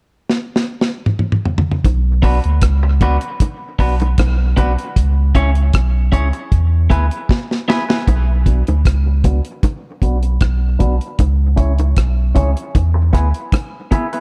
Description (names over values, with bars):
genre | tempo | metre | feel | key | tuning
dub reggae | 77 BPM | 4/4 | straight | B dorian | A4 = 441 Hz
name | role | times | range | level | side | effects
deep reggae drum kit | drums | 0.3-14.2 s | hi-hat, kick drum, rim click, snare drum, toms | -18 LUFS | equal | none
warm sub bass | bass | 1.8-13.3 s | B1 to E2 | -17 LUFS | equal | none
bongos | percussion | 1.9-14.1 s | none | -29 LUFS | equal | dub echo
clean electric guitar | accompaniment | 2.2-14.2 s | B3 to C#5 | -25 LUFS | equal | spring reverb, low-pass filter, dub echo
room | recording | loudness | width
small room ambience | dark, warm production | -16 LUFS | mono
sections
0.0-1.8 A section; 1.8-8.1 B section; 8.1-14.2 C section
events
drum fill 0.3-1.8, 7.3-8.1; part muted 5.0-8.1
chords
0.0 N.C.; 1.8 Bm; 5.0 C#m; 6.5 E; 8.1 Bm; 11.2 C#m; 12.7 E